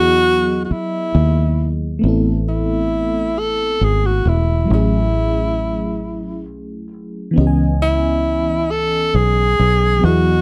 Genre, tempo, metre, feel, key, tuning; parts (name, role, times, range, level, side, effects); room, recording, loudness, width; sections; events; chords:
slow six-eight R&B; 45 BPM (dotted quarters); 6/8; straight; A4 = 437 Hz
breathy tenor saxophone; melody; 0.0-10.4 s; E4 to A4; -20 LUFS; equal
FM electric piano with tremolo; accompaniment; 0.0-10.4 s; E3 to G#5; -24 LUFS; equal
fingered electric bass; bass; 0.0-10.4 s; E1 to E2; -20 LUFS; equal
little or no reverb; dry, close 1970s-style studio recording; -17 LUFS; mono
0.0-2.0 A section; 2.0-10.4 B section
0.0 Emaj9; 2.0 Amadd9; 4.7 F#m9/A; 7.4 C#m9